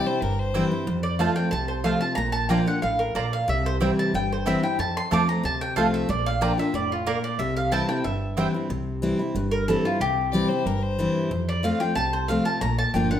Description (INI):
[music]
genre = bluegrass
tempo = 184 BPM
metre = 4/4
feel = straight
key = C mixolydian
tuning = A4 = 439 Hz
[part]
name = mandolin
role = melody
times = 0.0-13.2 s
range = F4 to D6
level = -26 LUFS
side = equal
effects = none
[part]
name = clear fiddle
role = second line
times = 0.0-1.0, 10.3-11.4 s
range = Bb4 to D5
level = -30 LUFS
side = left 3 dB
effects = none
[part]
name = picked steel-string acoustic guitar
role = accompaniment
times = 0.0-13.2 s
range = F2 to F4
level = -25 LUFS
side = left 1 dB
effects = none
[part]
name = upright bass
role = bass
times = 0.2-13.2 s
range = F1 to F2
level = -29 LUFS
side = right 1 dB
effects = none
[part]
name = mandolin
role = stabs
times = 0.5-8.5 s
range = A3 to Bb5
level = -30 LUFS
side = right 6 dB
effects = none
[sound]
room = wet large studio reverb, RT60 1.2 s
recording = none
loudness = -22 LUFS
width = side -10 dB against mid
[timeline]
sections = 0.0-8.7 A section; 8.7-13.2 A section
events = none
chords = 0.0 C; 0.9 F; 2.2 Bb; 3.5 C; 4.8 F; 6.1 Bb; 7.4 C; 11.3 F; 12.6 Bb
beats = 0.22 0.55 | 0.88 1.20 1.53 1.85 | 2.18 2.50 2.83 3.16 | 3.48 3.81 4.14 4.46 | 4.79 5.11 5.44 5.77 | 6.09 6.42 6.75 7.07 | 7.40 7.72 8.05 8.38 | 8.70 9.03 9.35 9.68 | 10.01 10.33 10.66 10.98 | 11.31 11.64 11.96 12.29 | 12.62 12.94